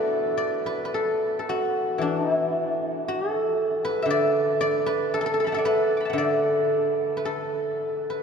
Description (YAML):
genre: chinese traditional, Chinese solo plucked strings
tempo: 52-59 BPM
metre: 2/4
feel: rubato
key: A zhi mode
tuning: A4 = 438 Hz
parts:
  - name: guzheng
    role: solo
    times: 0.0-8.2 s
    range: D3 to D6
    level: -22 LUFS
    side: equal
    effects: none
room: wet cathedral reverb, RT60 6.8 s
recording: recorded in a church or concert hall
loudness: -22 LUFS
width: side -6 dB against mid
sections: 0.0-8.2 A section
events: none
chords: none